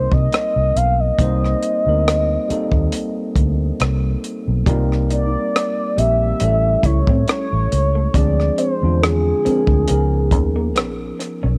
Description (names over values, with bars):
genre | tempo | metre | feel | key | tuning
R&B, neo-soul | 69 BPM | 4/4 | swing 54% on 16ths | C dorian | A4 = 439 Hz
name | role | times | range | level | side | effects
mellow horn-like synth lead | melody | 0.0-11.2 s | Ab4 to F5 | -23 LUFS | equal | chorus, phaser, tape echo
tine electric piano | accompaniment | 0.0-11.6 s | D3 to C5 | -26 LUFS | equal | cassette tape
vintage muted fingered electric bass | bass | 0.0-11.6 s | A1 to C3 | -21 LUFS | equal | none
compact cocktail drum kit | drums | 0.1-11.4 s | hi-hat, kick drum, rim click | -22 LUFS | equal | cassette tape
electric guitar through a small old amp | second line | 4.7-11.5 s | A3 to F4 | -29 LUFS | equal | analog chorus, cassette tape
room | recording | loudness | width
small room ambience | home recording on cassette | -18 LUFS | mono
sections
0.0-4.7 A section; 4.7-11.6 A section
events
none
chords
0.0 Cm7; 6.4 A7; 8.1 Dm7b5; 9.9 Db13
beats
0.32 | 1.19 2.05 2.92 3.79 | 4.66 5.53 6.40 7.27 | 8.14 9.01 9.88 10.75